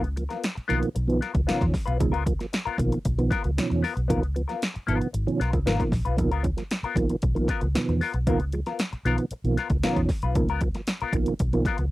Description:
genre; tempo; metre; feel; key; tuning
funk; 115 BPM; 4/4; straight; Db mixolydian; A4 = 440 Hz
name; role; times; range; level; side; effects
semi-hollow electric guitar; accompaniment; 0.0-11.8 s; Cb4 to Cb5; -30 LUFS; left 7 dB; wah
mellow tonewheel organ; stabs; 0.0-11.9 s; Cb3 to Db4; -26 LUFS; right 2 dB; chorus vibrato, slow rotary speaker
vintage muted fingered electric bass; bass; 0.0-11.9 s; Ab1 to Fb2; -26 LUFS; equal; none
punchy analog drum machine; drums; 0.0-11.9 s; hi-hat, kick drum, snare drum; -28 LUFS; equal; overdrive
room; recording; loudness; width
little or no reverb; dry, close 1970s-style studio recording; -23 LUFS; side -17 dB against mid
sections
0.0-11.9 A section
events
none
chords
0.0 Db13

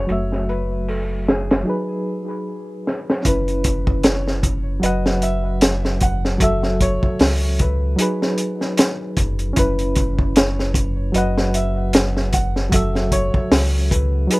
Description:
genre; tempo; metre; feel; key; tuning
trip hop; 76 BPM; 4/4; swing 57% on 16ths; F# dorian; A4 = 440 Hz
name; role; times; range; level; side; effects
felt-muted upright piano; melody; 0.0-14.4 s; G#4 to F#5; -28 LUFS; left 1 dB; tape echo
reed electric piano; accompaniment; 0.0-14.4 s; F#3 to F#5; -23 LUFS; right 1 dB; tremolo, tape echo
round analog bass; bass; 0.0-14.3 s; F#1 to C#2; -21 LUFS; equal; none
crunchy breakbeat drum kit; drums; 0.1-14.4 s; hi-hat, kick drum, snare drum; -19 LUFS; equal; low-pass filter on kick, low-pass filter on hats, low-pass filter on snare, low-pass filter on room
room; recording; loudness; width
little or no reverb; rough home demo mix; -17 LUFS; side -22 dB against mid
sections
0.0-3.3 A section; 3.3-14.4 B section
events
break 1.7-3.3; drum fill 2.9-3.3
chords
0.1 F#m7; 1.7 B6/F#; 3.3 C#m7/F#; 4.8 Badd11/F#; 6.4 F#m7; 8.0 B6/F#; 9.6 C#m7/F#; 11.1 Badd11/F#; 12.7 F#m7

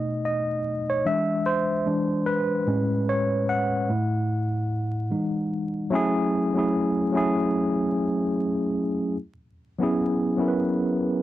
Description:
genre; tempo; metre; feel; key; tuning
R&B; 74 BPM; 4/4; swing 57% on 16ths; F# dorian; A4 = 436 Hz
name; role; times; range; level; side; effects
tine electric piano; solo; 0.0-11.2 s; A2 to F#5; -22 LUFS; equal; medium stereo tremolo
room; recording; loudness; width
little or no reverb; dry, close 1970s-style studio recording, vinyl crackle; -22 LUFS; side -14 dB against mid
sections
0.0-5.9 A section; 5.9-11.2 B section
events
tine electric piano solo 0.0-5.9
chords
0.0 B7; 1.1 Eaug7; 2.7 Amaj7; 3.9 F#m7/A; 5.1 Emaj7; 5.9 F#m9; 9.2 E69

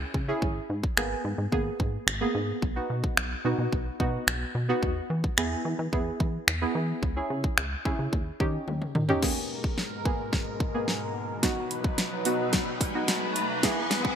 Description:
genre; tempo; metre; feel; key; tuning
dance-pop; 109 BPM; 4/4; straight; G# minor; A4 = 439 Hz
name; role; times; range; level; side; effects
deep mellow chord stab; accompaniment; 0.0-14.2 s; A#3 to G#4; -31 LUFS; right 1 dB; chorus, sidechain pumping
plucky analog bass; bass; 0.0-9.1 s; G#1 to E3; -31 LUFS; equal; sidechain pumping
pop drum kit; drums; 0.1-14.2 s; crash cymbal, finger snaps, hi-hat, kick drum, snare drum, toms; -28 LUFS; equal; none
lush unison pad; sustained chords; 9.2-14.2 s; E2 to B4; -33 LUFS; equal; chorus, phaser, sidechain pumping
riser; sound effects; 11.0-14.2 s; none; -34 LUFS; equal; none
room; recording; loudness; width
moderate plate reverb, RT60 2.2 s; bright 1980s-style digital production, high-pass filter; -25 LUFS; side -8 dB against mid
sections
0.0-9.2 A section; 9.2-14.2 B section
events
drum fill 8.7-9.2, 9.2-14.2; build-up 9.2-14.2; riser 11.0-14.2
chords
0.4 G#madd9; 2.6 B; 4.8 E; 7.0 C#m; 8.1 D#7; 9.2 G#madd9; 11.4 B; 13.6 E

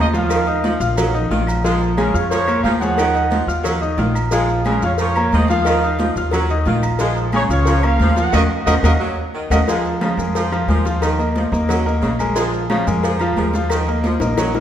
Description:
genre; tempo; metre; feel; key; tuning
latin, salsa; 179 BPM; 4/4; straight; Bb minor; A4 = 439 Hz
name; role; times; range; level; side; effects
mellow trumpet section; melody; 0.0-9.6 s; Db4 to Gb5; -22 LUFS; right 2 dB; none
bright saxophone section; second line; 0.0-14.6 s; Db3 to Ab3; -24 LUFS; right 1 dB; none
bright concert grand piano; accompaniment; 0.0-14.6 s; F3 to F6; -21 LUFS; left 1 dB; none
upright bass; bass; 0.0-14.6 s; Bb1 to F2; -20 LUFS; equal; none
congas; percussion; 0.1-14.6 s; none; -25 LUFS; equal; none
cowbell and bongos; percussion; 0.1-14.6 s; none; -27 LUFS; left 2 dB; none
maracas; percussion; 0.1-14.6 s; none; -38 LUFS; right 5 dB; none
agogo bells and timbales; percussion; 0.3-14.5 s; none; -28 LUFS; right 6 dB; none
claves; percussion; 0.3-14.5 s; none; -34 LUFS; left 2 dB; none
room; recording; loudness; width
wet scoring stage reverb, RT60 1.8 s; recorded in a church or concert hall; -15 LUFS; side -10 dB against mid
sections
0.0-9.7 A section; 9.7-14.6 B section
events
band accent 8.3-9.7; drum fill 8.8-9.7, 14.2-14.6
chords
0.3 Ebsus2; 1.6 Bbm7; 5.7 Ebsus2; 7.0 Bbm7; 8.3 Ebmadd9; 9.7 Bb7(no3); 11.0 Ebsus2

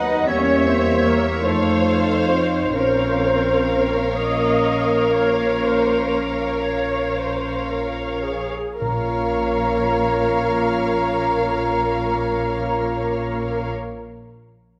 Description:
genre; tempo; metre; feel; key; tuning
classical; 34-54 BPM (dotted quarters); 12/8; rubato; Bb minor; A4 = 440 Hz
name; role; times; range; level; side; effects
muted studio violin section; melody; 0.0-13.7 s; E5 to F#5; -32 LUFS; equal; none
large flute ensemble; second line; 0.0-13.7 s; A4 to Bb5; -28 LUFS; equal; none
mellow clarinet; second line; 0.0-13.7 s; A4 to D#5; -29 LUFS; equal; none
muted chamber violin section; second line; 0.0-13.7 s; Bb4 to C#5; -29 LUFS; equal; none
muted chamber viola section; accompaniment; 0.0-13.7 s; Ab4 to Eb5; -29 LUFS; equal; none
dark French horn section; sustained chords; 0.0-13.7 s; F3 to F4; -28 LUFS; equal; none
muted chamber cello section; bass; 0.0-13.7 s; A3 to D#4; -30 LUFS; equal; none
muted chamber double bass section; bass; 0.0-13.7 s; Bb1 to F2; -30 LUFS; equal; none
timpani; percussion; 8.8-13.7 s; Bb2; -32 LUFS; equal; none
room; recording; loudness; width
wet recital hall reverb, RT60 1.4 s; none; -20 LUFS; mono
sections
0.0-8.8 A section; 8.8-14.8 B section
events
slowing down 0.0-8.8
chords
0.3 Edim7; 1.4 F7; 2.7 Bbm

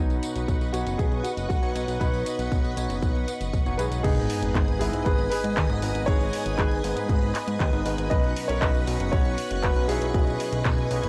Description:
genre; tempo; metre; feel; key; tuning
italo disco; 118 BPM; 4/4; straight; B major; A4 = 440 Hz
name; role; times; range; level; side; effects
clear concert grand piano; melody; 0.0-11.1 s; D#4 to D#5; -33 LUFS; equal; tape echo
string machine, full ensemble; sustained chords; 0.0-11.1 s; B4 to D#6; -35 LUFS; equal; ensemble chorus
overdriven tine electric piano; stabs; 0.0-11.1 s; G#2 to D#5; -35 LUFS; equal; none
fat analog bass; bass; 0.0-11.1 s; F#1 to G#2; -31 LUFS; equal; tube saturation
house drum kit; drums; 0.1-11.1 s; crash cymbal, handclaps, hi-hat, tambourine; -37 LUFS; equal; studio ambience
electronic kick drum; drums; 0.5-10.8 s; none; -27 LUFS; equal; studio ambience
sub drop; sound effects; 4.0-6.1 s; none; -35 LUFS; equal; none
room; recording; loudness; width
little or no reverb; dry, gritty hardware recording, transformer saturation; -25 LUFS; mono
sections
0.0-4.0 A section; 4.0-11.1 B section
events
impact 4.0-6.1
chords
0.0 Badd9; 4.0 G#m; 8.1 Badd9

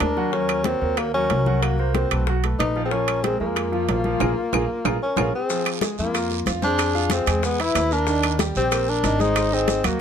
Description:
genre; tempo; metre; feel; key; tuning
Afro-Cuban jazz; 186 BPM; 4/4; straight; unclear; A4 = 439 Hz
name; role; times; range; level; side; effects
mellow tenor saxophone; melody; 0.0-10.0 s; Bb3 to E4; -24 LUFS; left 1 dB; none
breathy mellow concert flute; second line; 0.0-10.0 s; F4 to C5; -29 LUFS; left 8 dB; none
warm concert grand piano; accompaniment; 0.0-10.0 s; Eb3 to Gb5; -27 LUFS; right 2 dB; none
upright bass; bass; 0.0-10.0 s; Ab1 to F2; -26 LUFS; right 1 dB; none
bongos; percussion; 0.0-9.8 s; none; -32 LUFS; left 4 dB; none
claves; percussion; 0.0-10.0 s; none; -31 LUFS; left 5 dB; none
congas; percussion; 0.0-9.9 s; none; -30 LUFS; left 2 dB; none
timbales; percussion; 0.0-10.0 s; none; -28 LUFS; right 10 dB; none
guiro; percussion; 5.5-10.0 s; none; -35 LUFS; right 9 dB; none
maracas; percussion; 5.5-10.0 s; none; -37 LUFS; left 5 dB; none
room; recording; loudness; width
light reverb; none; -19 LUFS; side -8 dB against mid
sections
0.0-5.5 A section; 5.5-10.0 B section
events
band accent 4.2-5.5; drum fill 4.5-5.5, 9.8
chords
0.3 Ebm7; 1.6 Am69; 2.3 B5; 2.9 Bbm7; 5.5 Bbsus2; 6.8 Fm; 7.4 E; 8.1 Eb6; 9.4 Ab7

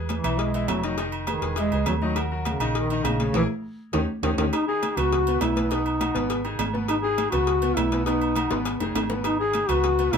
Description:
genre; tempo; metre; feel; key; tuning
latin, salsa; 203 BPM; 4/4; straight; G# minor; A4 = 438 Hz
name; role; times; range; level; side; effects
bright grand piano; accompaniment; 0.0-10.2 s; B2 to E5; -30 LUFS; left 2 dB; none
hollow-body short-scale fingered electric bass; bass; 0.0-10.2 s; E1 to E2; -29 LUFS; right 1 dB; none
mellow duduk; melody; 0.1-10.2 s; C#3 to G#4; -25 LUFS; left 1 dB; none
congas; percussion; 0.1-10.2 s; none; -32 LUFS; left 1 dB; none
cowbell and bongos; percussion; 0.1-10.2 s; none; -33 LUFS; left 5 dB; none
timbales and agogo bells; percussion; 0.1-10.2 s; none; -32 LUFS; right 7 dB; none
room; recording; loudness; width
moderate small room reverb, RT60 0.5 s; minimal, uncompressed stereo recording; -22 LUFS; side -6 dB against mid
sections
0.0-4.5 A section; 4.5-10.2 B section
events
band accent 3.3-4.5; drum fill 3.6-4.5, 8.5-9.2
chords
0.0 Emaj7; 1.0 Fm7b5; 1.6 E6; 2.2 D#m7; 3.3 E; 3.9 D#7; 4.5 G#m; 5.1 C#m7; 5.7 B; 6.3 G#m; 7.5 C#m7; 8.1 B; 8.7 G#m

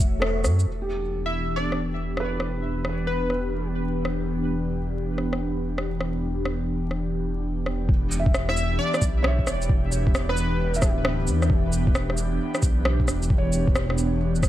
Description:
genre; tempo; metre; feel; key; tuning
future garage; 133 BPM; 4/4; swing 65% on 16ths; E dorian; A4 = 441 Hz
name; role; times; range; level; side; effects
felt-muted upright piano; accompaniment; 0.0-14.5 s; F#4 to E5; -34 LUFS; right 2 dB; sidechain pumping, dub echo
airy breathy pad; sustained chords; 0.0-14.5 s; E3 to E5; -29 LUFS; equal; chorus, phaser, sidechain pumping
dark detuned saw bass; bass; 0.0-14.5 s; D1 to F#2; -26 LUFS; equal; tube saturation, sidechain pumping
electronic kick drum; drums; 0.0-0.1, 7.9-14.5 s; none; -22 LUFS; equal; overdrive
electronic shaker and rim click; drums; 0.0-14.5 s; none; -28 LUFS; equal; none
plucky unison lead; melody; 1.3-3.7, 8.5-10.9 s; B4 to E5; -32 LUFS; equal; dub echo
room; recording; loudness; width
light reverb; echo-heavy mix, vinyl crackle; -22 LUFS; side -13 dB against mid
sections
0.7-7.9 A section; 7.9-14.5 B section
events
band accent 0.2; filter sweep on analog synth pad 0.7-7.9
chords
0.0 F#m7; 0.7 Em7

